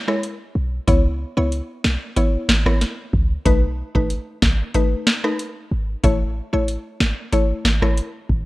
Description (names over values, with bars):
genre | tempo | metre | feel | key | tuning
dancehall | 93 BPM | 4/4 | straight | unclear | A4 = 440 Hz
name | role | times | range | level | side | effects
mallet-like synth pluck | accompaniment | 0.0-8.0 s | G#3 to C#5 | -23 LUFS | left 2 dB | chorus
booming analog drum machine | drums | 0.1-8.5 s | hi-hat, kick drum, rim click, snare drum | -18 LUFS | equal | vintage 12-bit sampler grit
short 808-style bass | bass | 0.6-8.5 s | G#1 to C#2 | -21 LUFS | equal | none
room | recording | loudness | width
little or no reverb | rough home demo mix | -18 LUFS | side -19 dB against mid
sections
0.0-8.5 A section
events
none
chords
0.0 E6; 0.9 C#m7; 3.5 B7; 6.0 A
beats
0.23 | 0.88 1.52 2.17 2.81 | 3.46 4.10 4.75 5.39 | 6.04 6.68 7.33 7.97